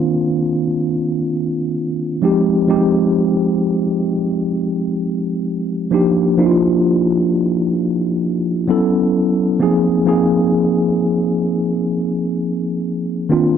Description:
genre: R&B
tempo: free time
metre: none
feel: none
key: unclear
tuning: A4 = 441 Hz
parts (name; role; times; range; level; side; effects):
- mellow tine electric piano; solo; 0.0-13.6 s; Eb3 to A4; -15 LUFS; equal; medium stereo tremolo
room: moderate plate reverb, RT60 2.9 s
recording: dark, warm production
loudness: -15 LUFS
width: side -8 dB against mid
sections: 0.0-13.6 A section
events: none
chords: 0.0 Cm11; 2.2 Fm9; 5.9 Ebmaj9; 8.7 A69; 9.6 Ab69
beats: free time

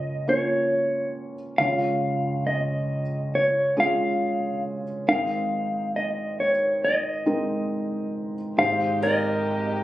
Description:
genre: acoustic folk-pop ballad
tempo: 69 BPM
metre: 4/4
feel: straight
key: Ab major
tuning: A4 = 440 Hz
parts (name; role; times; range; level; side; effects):
- mellow electric guitar; melody; 0.0-9.8 s; Db5 to F5; -24 LUFS; equal; harmonic tremolo
- felt-muted upright piano; accompaniment; 0.0-9.8 s; Ab1 to Db5; -26 LUFS; right 1 dB; none
- warm chamber string section; sustained chords; 8.6-9.8 s; Ab2 to G4; -32 LUFS; equal; none
- picked swing-style acoustic guitar; arpeggios; 9.0-9.8 s; Bb4; -27 LUFS; right 1 dB; none
room: moderate studio reverb, RT60 0.8 s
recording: recorded on a phone in the room, club reverb, compression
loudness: -22 LUFS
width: side -15 dB against mid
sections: 0.0-8.6 A section; 8.6-9.8 B section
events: none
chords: 0.0 Bbm/Db; 1.6 Db; 5.1 Abadd9; 8.6 Abmaj7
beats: 0.72 | 1.59 2.46 3.33 4.20 | 5.07 5.95 6.82 7.71 | 8.59 9.47

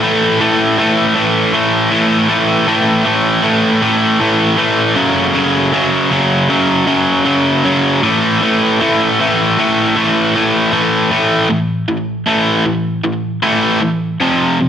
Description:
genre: rock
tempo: 78 BPM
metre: 4/4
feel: straight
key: A major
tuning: A4 = 441 Hz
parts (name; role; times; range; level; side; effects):
- crunchy overdriven guitar; solo; 0.0-14.7 s; F2 to A3; -11 LUFS; equal; slapback echo
room: moderate large studio reverb, RT60 1.1 s, digital ambience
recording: dense, heavily limited modern master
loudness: -11 LUFS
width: side -9 dB against mid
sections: 0.0-11.1 A section; 11.1-14.7 B section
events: none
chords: 0.0 A5; 5.0 F#5; 8.0 A5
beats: 0.41 1.17 | 1.93 2.69 3.45 4.21 | 4.97 5.74 6.50 7.26 | 8.03 8.80 9.57 10.34 | 11.11 11.88 12.65 13.43 | 14.20

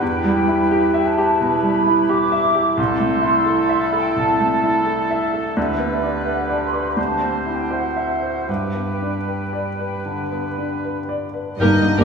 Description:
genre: classical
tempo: 76-88 BPM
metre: 4/4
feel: rubato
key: G major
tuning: A4 = 440 Hz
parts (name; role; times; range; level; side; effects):
- clear baby grand piano; melody; 0.0-12.0 s; C2 to E5; -21 LUFS; equal; none
- clear oboe; second line; 0.0-11.9 s; A4 to G5; -28 LUFS; right 2 dB; none
- mellow clarinet; second line; 0.0-11.9 s; E4 to Bb4; -26 LUFS; right 1 dB; none
- mellow hollow flute section; second line; 0.0-11.9 s; D5 to D6; -22 LUFS; right 1 dB; none
- rich symphonic violin section; melody; 11.6-12.0 s; Bb4; -27 LUFS; left 6 dB; none
- clear studio violin section; second line; 11.6-12.0 s; D5 to Eb5; -27 LUFS; left 1 dB; none
- clear symphonic viola section; accompaniment; 11.6-12.0 s; Bb3 to G4; -22 LUFS; right 2 dB; none
- mellow French horn section; sustained chords; 11.6-12.0 s; D4 to Eb4; -20 LUFS; left 1 dB; none
- rich symphonic cello section; bass; 11.6-12.0 s; G2; -25 LUFS; left 1 dB; none
- rich symphonic double bass section; bass; 11.6-12.0 s; G1; -23 LUFS; right 2 dB; none
- timpani; percussion; 11.6-12.0 s; G2; -24 LUFS; equal; none
room: wet scoring stage reverb, RT60 1.9 s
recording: recorded in a church or concert hall, small room ambience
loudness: -17 LUFS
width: side -5 dB against mid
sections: 0.0-11.6 A section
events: none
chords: 0.0 Em; 2.8 Am/C; 5.6 G/D; 7.0 D9; 8.5 G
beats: | 0.01 0.70 1.40 2.09 | 2.78 3.46 4.16 4.87 | 5.57 6.26 6.97 7.71 | 8.48 9.27 10.05 10.83 | 11.60

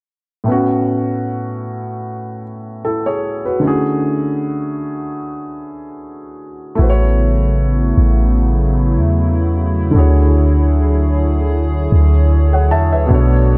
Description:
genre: contemporary R&B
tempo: 76 BPM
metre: 4/4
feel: swing 54% on 16ths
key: unclear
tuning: A4 = 443 Hz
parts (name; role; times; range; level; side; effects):
- dark concert grand piano; accompaniment; 0.4-13.6 s; A2 to A5; -21 LUFS; equal; none
- hollow soft pad; sustained chords; 6.8-13.6 s; C#3 to C#5; -22 LUFS; equal; chorus
- clean 808-style bass; bass; 6.8-13.6 s; A1 to E2; -15 LUFS; equal; none
room: small room ambience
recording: dark, warm production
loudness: -15 LUFS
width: mono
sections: 0.5-6.8 A section; 6.8-13.6 B section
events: none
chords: 0.5 A69; 3.6 Dmaj9#11; 6.8 A69; 9.9 Dmaj9#11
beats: | 0.47 1.26 2.05 2.84 | 3.63 4.42 5.21 6.00 | 6.79 7.58 8.37 9.16 | 9.95 10.74 11.53 12.31 | 13.10

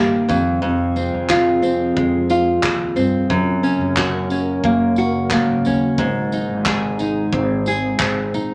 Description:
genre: acoustic pop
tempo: 90 BPM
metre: 4/4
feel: straight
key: unclear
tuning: A4 = 440 Hz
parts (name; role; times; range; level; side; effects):
- nylon-string guitar; accompaniment; 0.0-8.5 s; F2 to Ab4; -20 LUFS; equal; none
- glassy FM pad; sustained chords; 0.0-8.5 s; Bb2 to Bb4; -28 LUFS; equal; ensemble chorus, built-in reverb
- upright bass; bass; 0.0-8.5 s; Ab1 to Ab2; -30 LUFS; equal; none
- modern studio drum kit; drums; 0.3-8.5 s; handclaps, kick drum, tambourine; -26 LUFS; equal; none
room: moderate studio reverb, RT60 0.8 s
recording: none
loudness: -18 LUFS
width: mono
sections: 0.0-8.5 A section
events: none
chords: 0.3 Fm; 3.3 Gb; 6.0 Ab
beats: | 0.63 1.29 1.96 2.63 | 3.30 3.97 4.64 5.31 | 5.98 6.65 7.32 7.99

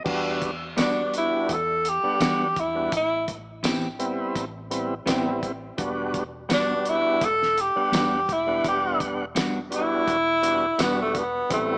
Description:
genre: straight-eighth soul blues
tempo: 84 BPM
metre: 4/4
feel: swing 54% on 16ths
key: E minor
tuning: A4 = 439 Hz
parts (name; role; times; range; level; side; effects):
- tonewheel organ; accompaniment; 0.0-11.8 s; G3 to F#5; -28 LUFS; equal; slow rotary speaker, overdrive
- vintage muted fingered electric bass; bass; 0.1-11.8 s; E1 to E3; -40 LUFS; equal; none
- cloth-damped thuddy drum kit; drums; 0.1-11.7 s; crash cymbal, hi-hat, kick drum, snare drum, tambourine; -28 LUFS; equal; none
- warm tenor saxophone; melody; 0.8-11.8 s; A3 to A4; -22 LUFS; equal; none
- mellow electric guitar; stabs; 0.8-11.0 s; E3 to G4; -30 LUFS; equal; none
room: light reverb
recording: small speaker sound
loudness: -22 LUFS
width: side -32 dB against mid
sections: 0.1-11.8 A section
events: tenor saxophone solo 0.1-11.8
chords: 0.1 Em9; 2.9 Am9; 5.8 Em9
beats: | 0.06 0.77 1.49 2.21 | 2.92 3.64 4.35 5.07 | 5.78 6.50 7.21 7.93 | 8.64 9.36 10.07 10.79 | 11.50

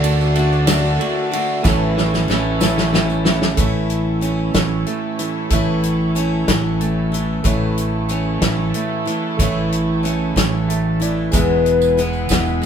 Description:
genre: folk rock and heartland rock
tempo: 62 BPM (dotted quarters)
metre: 6/8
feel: straight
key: A major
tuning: A4 = 439 Hz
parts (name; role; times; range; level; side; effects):
- clear grand piano; accompaniment; 0.0-12.7 s; G#4 to A5; -31 LUFS; right 7 dB; none
- picked steel-string acoustic guitar; accompaniment; 0.0-12.7 s; E2 to F#4; -23 LUFS; left 5 dB; none
- dark studio string section; sustained chords; 0.0-12.7 s; C#3 to D5; -28 LUFS; equal; none
- electric guitar at the edge of break-up; riff; 0.0-12.7 s; E2 to F#4; -22 LUFS; right 4 dB; spring reverb
- fingered electric bass; bass; 0.0-12.6 s; E1 to D2; -20 LUFS; equal; none
- natural country drum kit; drums; 0.0-12.7 s; hi-hat, kick drum, ride cymbal, snare drum; -20 LUFS; equal; none
- tambourine; percussion; 0.2-3.2, 11.3-12.7 s; none; -32 LUFS; right 7 dB; none
room: moderate studio reverb, RT60 0.8 s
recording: band playing live in one room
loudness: -15 LUFS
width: side -8 dB against mid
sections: 0.0-3.6 A section; 3.6-12.7 B section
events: drum fill 1.6-3.6; grand piano fill 10.4-11.3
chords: 0.0 D; 1.6 A; 11.3 E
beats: 0.68 | 1.65 2.61 | 3.58 4.54 | 5.51 6.48 | 7.45 8.42 | 9.39 10.36 | 11.33 12.30

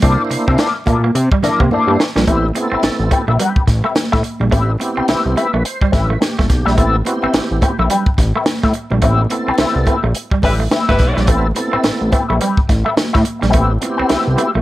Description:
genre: funk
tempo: 106 BPM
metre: 4/4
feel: swing 60% on 16ths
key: unclear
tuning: A4 = 440 Hz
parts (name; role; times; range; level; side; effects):
- electric guitar with an envelope filter; accompaniment; 0.0-14.6 s; Bb3 to G5; -20 LUFS; left 4 dB; wah, plate reverb
- semi-hollow electric guitar; riff; 0.0-14.6 s; G3 to C4; -22 LUFS; right 4 dB; none
- tonewheel organ; stabs; 0.0-14.5 s; Bb3 to C5; -21 LUFS; right 2 dB; overdrive, chorus vibrato, slow rotary speaker, plate reverb
- fat analog bass; bass; 0.0-14.6 s; G1 to C3; -16 LUFS; equal; none
- compact cocktail drum kit; drums; 0.0-14.5 s; hi-hat, kick drum, snare drum; -17 LUFS; equal; none
- congas; percussion; 0.0-14.5 s; none; -26 LUFS; right 2 dB; none
- mellow horn section; second line; 10.4-11.3 s; G3 to B4; -20 LUFS; left 1 dB; none
room: light reverb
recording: vinyl crackle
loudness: -13 LUFS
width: side -16 dB against mid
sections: 0.0-2.3 A section; 2.3-14.6 B section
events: drum fill 1.7-2.3; tonewheel organ fill 5.1-6.8; band accent 9.0-11.3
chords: 0.0 C13; 2.3 Am9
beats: | 0.03 0.59 1.15 1.71 | 2.28 2.84 3.40 3.96 | 4.53 5.09 5.65 6.21 | 6.78 7.34 7.90 8.47 | 9.03 9.59 10.16 10.72 | 11.29 11.85 12.41 12.97 | 13.54 14.10

